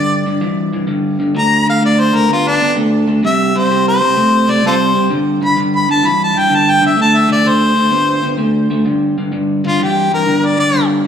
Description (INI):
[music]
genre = blues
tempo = 128 BPM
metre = 4/4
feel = swing 68% on 8ths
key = G mixolydian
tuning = A4 = 439 Hz
[part]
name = bright harmonica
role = melody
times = 0.0-10.8 s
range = D4 to B5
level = -14 LUFS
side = left 1 dB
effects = overdrive, slapback echo
[part]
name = electric guitar through a small old amp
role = riff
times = 0.0-11.1 s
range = G2 to B3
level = -14 LUFS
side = equal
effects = slapback echo
[sound]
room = moderate lush hall reverb, RT60 2.6 s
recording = live gig heard through the venue's PA, club reverb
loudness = -11 LUFS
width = side -8 dB against mid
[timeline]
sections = 0.0-8.9 A section; 8.9-11.1 B section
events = harmonica solo 0.0-8.9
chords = 0.0 G5; 1.4 D5; 3.2 C5; 5.1 G5; 7.0 D5; 8.9 G5